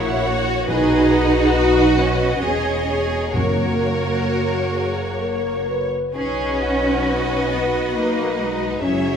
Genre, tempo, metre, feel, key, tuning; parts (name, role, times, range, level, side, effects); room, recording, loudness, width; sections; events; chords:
classical; 66 BPM; 3/4; uneven beats, rubato; B major; A4 = 440 Hz
rich studio violin section; melody; 0.0-9.2 s; C#5 to F#5; -30 LUFS; left 3 dB
rich studio violin section; second line; 0.0-9.2 s; C#4 to A#4; -25 LUFS; left 1 dB
rich studio viola section; accompaniment; 0.0-9.2 s; F#4 to C#5; -25 LUFS; equal
mellow French horn section; sustained chords; 0.0-9.2 s; D#4 to C#5; -24 LUFS; left 3 dB
rich studio double bass section; bass; 0.0-9.2 s; E1 to B1; -26 LUFS; right 2 dB
rich symphonic cello section; bass; 0.0-9.2 s; F#3 to D#4; -22 LUFS; right 2 dB
timpani; percussion; 0.7-4.7 s; F#2 to B2; -27 LUFS; left 1 dB
wet recital hall reverb, RT60 1.6 s; recorded in a church or concert hall; -17 LUFS; side -7 dB against mid
0.0-9.2 A section
0.0 F#7; 0.7 B; 2.4 C#m/E; 3.3 F#; 6.1 B